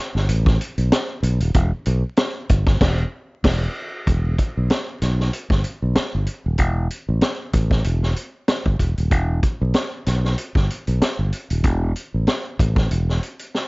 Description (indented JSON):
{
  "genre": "funk",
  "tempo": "95 BPM",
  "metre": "4/4",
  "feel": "swing 56% on 16ths",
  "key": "unclear",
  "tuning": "A4 = 440 Hz",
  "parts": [
    { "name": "fingered electric bass", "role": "bass", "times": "0.1-13.2 s", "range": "D#1 to B1", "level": "-19 LUFS", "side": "equal", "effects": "none" },
    { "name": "vintage drum kit", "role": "drums", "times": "0.2-13.7 s", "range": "crash cymbal, hi-hat, kick drum, snare drum", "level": "-20 LUFS", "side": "equal", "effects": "none" }
  ],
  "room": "little or no reverb",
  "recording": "dark, warm production, vinyl crackle, nothing above 7.6 kHz",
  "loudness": "-18 LUFS",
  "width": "side -28 dB against mid",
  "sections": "0.0-4.1 A section; 4.1-13.7 B section",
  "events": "band accent 2.8-4.1",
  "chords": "none",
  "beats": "0.29 0.92 | 1.55 2.18 2.81 3.44 | 4.07 4.70 5.33 5.96 | 6.59 7.22 7.85 8.48 | 9.11 9.75 10.38 11.01 | 11.64 12.27 12.90 13.53"
}